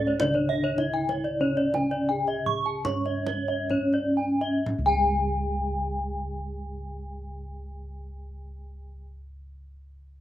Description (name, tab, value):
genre	Balinese gamelan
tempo	58-111 BPM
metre	4/4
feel	straight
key	C# pelog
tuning	A4 = 440 Hz
part	gamelan-type bronze metallophone	melody	0.0-9.0 s	C#4 to C#5	-29 LUFS	equal	slapback echo
part	gamelan-type bronze metallophone	accompaniment	0.0-9.0 s	C#3 to C#4	-37 LUFS	right 3 dB	none
part	gamelan-type bronze metallophone	arpeggios	0.0-9.0 s	C#5 to C#6	-31 LUFS	right 4 dB	none
part	gamelan-type bossed gongs	bass	0.0-9.0 s	C#2 to A4-40c	-34 LUFS	equal	none
part	gamelan-type bronze metallophone	arpeggios	0.1-9.0 s	C#5 to C#6	-28 LUFS	left 3 dB	none
part	kendang	percussion	0.1-5.1 s	none	-36 LUFS	right 1 dB	none
room	wet small room reverb, RT60 0.5 s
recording	rough home demo mix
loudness	-24 LUFS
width	side -13 dB against mid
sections	0.0-4.7 A section; 4.7-8.8 B section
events	slowing down 0.0-4.7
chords	none